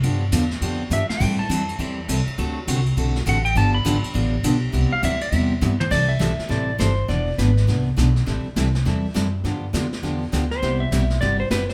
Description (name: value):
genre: country, western swing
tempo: 204 BPM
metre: 4/4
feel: swing 62% on 8ths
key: C major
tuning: A4 = 440 Hz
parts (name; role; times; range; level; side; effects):
- picked steel-string acoustic guitar; accompaniment; 0.0-11.6 s; C3 to A4; -27 LUFS; equal; none
- upright bass; bass; 0.0-11.7 s; E1 to A2; -24 LUFS; equal; none
- vintage brush drum kit; drums; 0.0-11.7 s; brushed snare drum, crash cymbal, hi-hat, kick drum, ride cymbal, snare drum, toms; -32 LUFS; equal; none
- clean lap steel guitar; melody; 0.9-7.8, 10.5-11.7 s; B4 to B5; -27 LUFS; equal; none
room: moderate large studio reverb, RT60 1.1 s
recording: band playing live in one room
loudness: -21 LUFS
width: mono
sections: 0.0-5.9 A section; 5.9-11.7 B section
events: electric slide guitar solo 0.0-5.9; drum fill 0.9, 5.6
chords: 0.0 G7; 1.2 Am7; 2.4 D7; 3.6 G7; 4.7 Cmaj7; 5.9 C6; 7.1 E7; 8.3 Am7; 9.4 G7; 10.6 Cmaj7